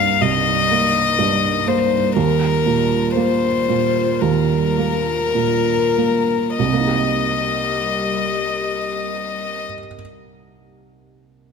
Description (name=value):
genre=neoclassical piano and strings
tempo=47-63 BPM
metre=4/4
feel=rubato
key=C minor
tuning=A4 = 440 Hz
part: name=rich violin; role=melody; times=0.0-9.6 s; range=Bb4 to F5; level=-19 LUFS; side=left 7 dB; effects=slapback echo
part: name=felt-muted upright piano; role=accompaniment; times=0.0-11.5 s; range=C2 to Eb5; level=-20 LUFS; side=right 5 dB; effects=none
part: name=warbly tape-like pad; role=sustained chords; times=0.0-9.7 s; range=G3 to Bb4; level=-28 LUFS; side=left 1 dB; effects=chorus, built-in reverb, phaser
room=moderate scoring stage reverb, RT60 2.1 s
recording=none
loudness=-16 LUFS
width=side -6 dB against mid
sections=0.0-6.6 A section; 6.6-11.4 B section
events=slowing down 0.0-6.6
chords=0.0 Cm7; 2.1 Ebadd9; 6.6 Cm7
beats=0.22 1.18 | 2.15 3.15 4.20 5.34 | 6.58 7.81 9.02 10.22